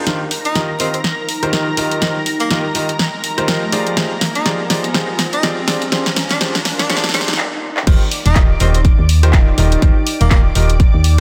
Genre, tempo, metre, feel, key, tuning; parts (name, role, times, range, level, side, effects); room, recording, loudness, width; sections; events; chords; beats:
piano house; 123 BPM; 4/4; swing 58% on 16ths; Eb major; A4 = 440 Hz
analog string pad; sustained chords; 0.0-11.2 s; Bb4 to D6; -29 LUFS; equal; ensemble chorus, sidechain pumping
clear baby grand piano; riff; 0.0-10.7 s; Eb3 to Eb5; -24 LUFS; equal; sidechain pumping, low-pass filter, delay
riser; sound effects; 0.0-7.4 s; -30 LUFS; equal
deep dark ambient pad; texture; 0.0-11.2 s; Eb4 to D6; -30 LUFS; equal; chorus, built-in reverb, sidechain pumping
house drum kit; drums; 0.1-11.2 s; crash cymbal, handclaps, hi-hat, snare drum; -22 LUFS; equal
clear tenor saxophone; melody; 0.5-10.4 s; Bb3 to Eb4; -26 LUFS; equal; delay
solid FM bass; bass; 7.9-11.2 s; Eb1 to Eb2; -15 LUFS; equal; sidechain pumping
electronic kick drum; drums; 7.9-10.9 s; -14 LUFS; equal
light reverb; dense, heavily limited modern master, high-pass filter; -15 LUFS; mono
0.1-7.9 A section; 7.9-11.2 B section
build-up 0.1-7.9; drum fill 0.1-7.4, 7.4-7.9; riser 0.1-7.4; stop 7.4-7.9; drop 7.9-11.2
0.1 Eb69; 3.7 Fm9; 5.7 Bb7; 7.9 Ebadd9
| 0.07 0.55 1.04 1.53 | 2.02 2.51 2.99 3.48 | 3.97 4.46 4.95 5.43 | 5.92 6.41 6.90 7.38 | 7.87 8.36 8.85 9.34 | 9.82 10.31 10.80